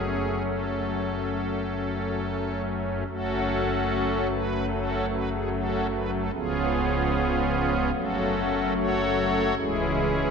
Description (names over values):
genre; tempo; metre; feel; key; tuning
classical, chorale-style piece for pipe organ; 66-75 BPM; 4/4; rubato; F# minor; A4 = 440 Hz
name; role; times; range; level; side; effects
pipe organ, strings celeste; solo; 0.0-10.3 s; C#1 to C#5; -24 LUFS; equal; none
room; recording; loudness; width
wet church reverb, RT60 3.6 s; nothing above 10.4 kHz; -24 LUFS; side -6 dB against mid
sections
0.0-3.1 A section; 3.1-10.3 A section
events
none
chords
0.0 F#m; 6.3 C#7; 8.0 F#m; 9.6 C#m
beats
0.45 1.34 2.22 | 3.08 3.90 4.72 5.53 | 6.34 7.15 7.95 8.76 | 9.57